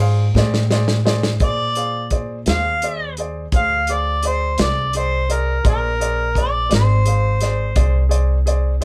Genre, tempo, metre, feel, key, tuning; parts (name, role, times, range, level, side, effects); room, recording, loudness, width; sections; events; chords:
slow blues; 57 BPM (dotted quarters); 12/8; straight; Bb mixolydian; A4 = 440 Hz
clear upright piano; accompaniment; 0.0-8.8 s; Ab4 to F5; -28 LUFS; equal
upright bass; bass; 0.0-8.8 s; Ab1 to Bb2; -21 LUFS; equal
warm soul drum kit; drums; 0.4-8.8 s; hi-hat, kick drum, snare drum; -22 LUFS; equal
mellow harmonica; melody; 1.4-8.1 s; Bb4 to F5; -23 LUFS; equal; overdrive
light reverb; band playing live in one room; -18 LUFS; mono
0.0-1.4 A section; 1.4-8.8 B section
drum fill 0.3-1.4
0.0 Bb9 (rootless); 1.4 Bb9